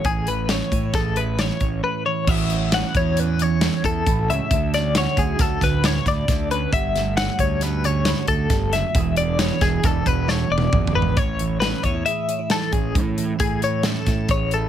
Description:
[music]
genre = math rock and midwest emo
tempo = 135 BPM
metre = 5/4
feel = straight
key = A major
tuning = A4 = 440 Hz
[part]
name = twelve-string electric guitar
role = accompaniment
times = 0.0-14.7 s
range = E2 to B4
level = -26 LUFS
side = right 12 dB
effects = none
[part]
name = twelve-string electric guitar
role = arpeggios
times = 0.0-14.7 s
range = G#4 to F#5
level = -24 LUFS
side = left 5 dB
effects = tremolo
[part]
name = fuzz fingered electric bass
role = bass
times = 0.0-14.7 s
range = E1 to A2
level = -24 LUFS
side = equal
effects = overdrive
[part]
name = modern studio drum kit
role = drums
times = 0.0-14.6 s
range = crash cymbal, hi-hat, kick drum, snare drum, toms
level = -23 LUFS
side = equal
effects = none
[sound]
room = light reverb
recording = none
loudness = -18 LUFS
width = side -10 dB against mid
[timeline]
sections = 0.0-2.3 A section; 2.3-11.2 B section; 11.2-14.7 A section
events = drum fill 10.3-11.2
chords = 0.1 Amaj7; 2.3 A6; 4.5 Dmaj7; 6.7 Gmaj7sus2; 9.0 E7; 11.2 Amaj7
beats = | 0.06 0.51 0.95 1.40 1.84 | 2.29 2.73 3.18 3.62 4.07 | 4.51 4.96 5.40 5.84 6.29 | 6.73 7.18 7.62 8.07 8.51 | 8.96 9.40 9.85 10.29 10.74 | 11.18 11.63 12.07 12.52 12.96 | 13.41 13.85 14.30

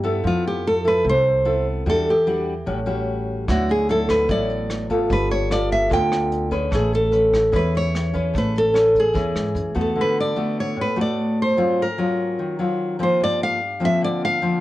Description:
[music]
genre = bossa nova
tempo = 148 BPM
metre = 4/4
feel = straight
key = A major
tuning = A4 = 444 Hz
[part]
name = nylon-string guitar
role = accompaniment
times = 0.0-14.6 s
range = G2 to B4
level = -23 LUFS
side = left 1 dB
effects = none
[part]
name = upright bass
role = bass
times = 0.0-9.9 s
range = G1 to G#2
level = -25 LUFS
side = equal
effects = none
[part]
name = nylon-string guitar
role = melody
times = 0.3-14.6 s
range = F4 to G5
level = -20 LUFS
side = equal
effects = none
[part]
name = vintage brush drum kit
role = drums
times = 3.5-9.9 s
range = hi-hat, kick drum, rim click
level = -29 LUFS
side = equal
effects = none
[sound]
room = light reverb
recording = worn, warbling old tape, cassette tape, warbly pitch drift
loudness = -18 LUFS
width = side -16 dB against mid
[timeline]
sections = 0.0-10.0 A section; 10.0-14.6 B section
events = none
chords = 0.2 Fmaj7#11; 1.9 Em9; 2.7 A6; 3.5 D69; 5.1 G9; 6.7 Amaj9; 10.0 D6; 11.6 G#13; 13.2 Gm7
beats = | 0.24 0.65 1.05 1.45 | 1.86 2.26 2.67 3.07 | 3.48 3.88 4.29 4.69 | 5.10 5.50 5.91 6.31 | 6.72 7.12 7.53 7.93 | 8.34 8.74 9.15 9.55 | 9.96 10.37 10.77 11.18 | 11.58 11.99 12.39 12.80 | 13.20 13.61 14.01 14.42

